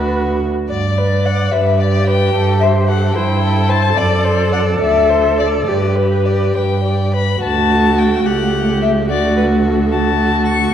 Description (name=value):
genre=quick classical-period movement for string quartet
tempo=68-75 BPM (dotted quarters)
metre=6/8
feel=rubato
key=G major, D major from 7.4 s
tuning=A4 = 440 Hz
part: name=warm violin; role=second line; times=0.0-10.7 s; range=F#4 to D5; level=-20 LUFS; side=equal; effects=none
part: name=warm viola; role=accompaniment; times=0.0-10.7 s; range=A3 to B4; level=-19 LUFS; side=right 1 dB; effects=none
part: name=rich cello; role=bass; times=0.0-10.7 s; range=C#2 to G2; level=-17 LUFS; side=right 2 dB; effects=none
part: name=rich violin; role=melody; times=0.7-10.7 s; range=A4 to C#6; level=-18 LUFS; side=left 6 dB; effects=none
room=wet scoring stage reverb, RT60 1.7 s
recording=dark, warm production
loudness=-12 LUFS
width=side -9 dB against mid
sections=0.0-7.4 A section; 7.4-10.7 B section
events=none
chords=0.0 D; 0.7 G; 2.3 Am7/G; 4.0 D7/F#; 4.8 D5; 5.7 G; 7.4 D; 8.3 A7/C#; 9.1 D